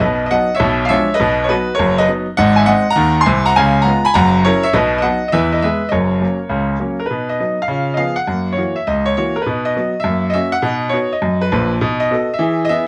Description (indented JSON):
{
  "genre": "jazz, stride piano",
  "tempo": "204 BPM",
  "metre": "4/4",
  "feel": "swing 66% on 8ths",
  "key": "B major",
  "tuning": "A4 = 439 Hz",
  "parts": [
    { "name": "clear grand piano", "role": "solo", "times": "0.0-12.9 s", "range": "F#1 to B#5", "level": "-16 LUFS", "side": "equal", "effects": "none" }
  ],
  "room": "light reverb",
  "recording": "close, detailed microphones",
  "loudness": "-16 LUFS",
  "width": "mono",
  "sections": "0.0-7.1 A section; 7.1-12.9 B section",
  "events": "none",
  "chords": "0.0 B; 0.6 Bdim7; 1.2 B; 2.4 G#7; 3.6 C#7; 4.2 F#7; 4.7 B; 5.3 E; 5.9 F#; 7.1 B; 7.7 C#7; 8.3 F#7; 9.5 B; 10.1 F#; 10.6 B; 11.8 B7"
}